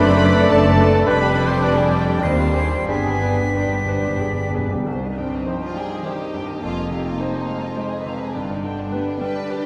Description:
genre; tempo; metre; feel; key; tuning
classical; 86-108 BPM; 3/4; rubato; C minor; A4 = 440 Hz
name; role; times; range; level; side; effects
clear concert grand piano; melody; 0.0-9.7 s; C2 to D5; -26 LUFS; equal; none
warm studio violin section; melody; 0.0-9.7 s; Eb5 to C6; -34 LUFS; equal; none
bright silver concert flute; second line; 0.0-4.5 s; D6 to C7; -32 LUFS; equal; none
clear studio violin section; second line; 0.0-9.7 s; G3 to C5; -32 LUFS; equal; none
mellow clarinet; second line; 0.0-4.6 s; Eb4 to C5; -31 LUFS; equal; none
dark studio viola section; accompaniment; 0.0-9.7 s; D4 to G5; -31 LUFS; equal; none
warm bassoon; accompaniment; 0.0-4.5 s; G3 to A3; -30 LUFS; equal; none
mellow French horn section; sustained chords; 0.0-4.5 s; G3 to D4; -28 LUFS; equal; none
dark trumpet; stabs; 0.0-4.5 s; Eb4 to C5; -28 LUFS; equal; none
dark chamber cello section; bass; 0.0-9.7 s; Eb2 to D4; -29 LUFS; equal; none
warm studio double bass section; bass; 0.0-8.8 s; F1 to Eb2; -27 LUFS; equal; none
timpani; percussion; 2.9-4.8 s; G2; -32 LUFS; equal; none
room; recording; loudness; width
wet cathedral reverb, RT60 5.2 s; in a vast, echoing space; -20 LUFS; mono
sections
0.0-4.9 A section; 4.9-9.7 B section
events
timpani fill 2.9-4.9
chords
0.0 D7/F#; 1.1 G7/F; 2.2 Cm/Eb; 2.9 G; 4.9 Cm; 6.6 Fm7; 8.3 G

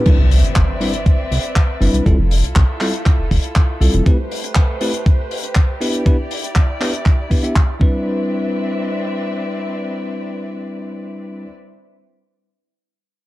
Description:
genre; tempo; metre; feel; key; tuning
nu-disco, nu disco; 120 BPM; 4/4; straight; C major; A4 = 439 Hz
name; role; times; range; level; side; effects
bell-like tine electric piano; accompaniment; 0.0-11.5 s; G3 to E5; -22 LUFS; equal; digital delay
muted studio violin section; sustained chords; 0.0-11.5 s; A3 to E5; -28 LUFS; equal; sidechain pumping
chorused synth bass; bass; 0.1-4.0 s; F1 to C2; -14 LUFS; equal; none
damped 70s drum kit; drums; 0.1-7.7 s; crash cymbal, handclaps, hi-hat; -24 LUFS; left 1 dB; small room ambience
electronic kick drum; drums; 0.1-7.9 s; none; -14 LUFS; equal; small room ambience
impact; sound effects; 0.1-2.1 s; none; -24 LUFS; equal; none
room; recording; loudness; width
studio reverb; dark, warm production; -14 LUFS; side -16 dB against mid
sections
0.1-8.1 A section; 8.1-12.1 B section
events
impact 0.1-2.1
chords
0.1 Cmaj9; 2.1 Fmaj9; 4.1 Am9; 5.8 Em7; 7.8 Cmaj9

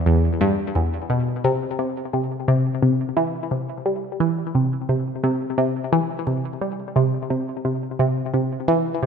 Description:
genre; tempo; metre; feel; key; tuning
ambient; 87 BPM; 4/4; straight; unclear; A4 = 442 Hz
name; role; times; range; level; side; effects
analog pluck; solo; 0.0-9.1 s; E2 to G3; -20 LUFS; equal; chorus, phaser, ping-pong delay
room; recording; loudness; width
wet concert hall reverb, RT60 2.0 s; none; -20 LUFS; side -6 dB against mid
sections
0.0-1.4 A section; 1.4-9.1 B section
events
none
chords
none

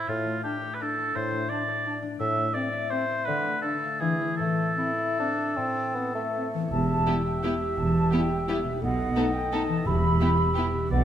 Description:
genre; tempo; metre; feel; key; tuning
classical; 146-186 BPM; 3/4; rubato; A minor, E minor from 6.7 s; A4 = 441 Hz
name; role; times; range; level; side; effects
warm oboe; second line; 0.0-11.0 s; F4 to E5; -30 LUFS; equal; none
concert harp; arpeggios; 0.0-11.0 s; A2 to F5; -32 LUFS; left 6 dB; none
warm bassoon; accompaniment; 0.1-6.7 s; A2 to E4; -32 LUFS; right 2 dB; none
dark clarinet; second line; 0.4-11.0 s; C4 to B4; -34 LUFS; equal; none
mellow large flute ensemble; second line; 0.4-11.0 s; E5 to B5; -32 LUFS; right 1 dB; none
warm studio double bass section; bass; 6.7-11.0 s; E1 to B1; -29 LUFS; right 2 dB; none
warm symphonic cello section; bass; 6.7-11.0 s; E2 to B2; -29 LUFS; right 2 dB; none
warm symphonic violin section; melody; 7.1-10.6 s; G4 to A4; -39 LUFS; left 2 dB; none
warm symphonic violin section; second line; 7.1-10.7 s; D#4 to E4; -39 LUFS; left 4 dB; none
clear studio viola section; accompaniment; 7.1-10.6 s; B3; -32 LUFS; right 1 dB; none
mellow French horn section; sustained chords; 7.1-10.7 s; G3 to E4; -34 LUFS; left 4 dB; none
timpani; percussion; 9.9-10.3 s; E2; -32 LUFS; equal; none
room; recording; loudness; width
moderate recital hall reverb, RT60 1.7 s; none; -24 LUFS; side -10 dB against mid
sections
0.0-6.7 A section; 6.7-11.0 B section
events
none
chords
0.1 D5/A; 2.2 Am; 3.3 Dm; 4.0 E7; 4.4 Am; 6.7 Em; 8.8 B7; 9.9 Em

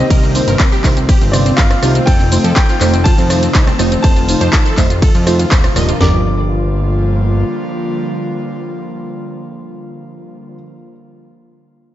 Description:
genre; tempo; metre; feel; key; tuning
progressive house; 122 BPM; 4/4; straight; G minor; A4 = 439 Hz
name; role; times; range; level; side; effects
clear baby grand piano; melody; 0.0-10.5 s; D5 to D6; -24 LUFS; left 1 dB; analog delay
airy breathy pad; sustained chords; 0.0-10.5 s; C3 to F4; -22 LUFS; left 1 dB; chorus, sidechain pumping
wide unison pluck; arpeggios; 0.0-10.5 s; C4 to Eb5; -21 LUFS; equal; sidechain pumping, analog delay
deep mellow chord stab; stabs; 0.0-10.5 s; G2 to C5; -19 LUFS; right 2 dB; chorus, phaser, sidechain pumping, analog delay
fat analog bass; bass; 0.0-7.4 s; Eb1 to F2; -16 LUFS; equal; sidechain pumping
house drum kit; drums; 0.1-6.1 s; kick drum, snare drum, toms; -12 LUFS; equal; overdrive
house drum kit; drums; 0.1-6.0 s; handclaps, hi-hat, ride cymbal, rim click, shaker; -20 LUFS; equal; overdrive
room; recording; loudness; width
light reverb, digital ambience; nothing above 7.7 kHz; -10 LUFS; side -13 dB against mid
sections
0.0-6.0 A section; 6.0-9.9 B section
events
drop 0.0-6.0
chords
0.0 Cm7; 2.1 F7; 6.0 Gm7

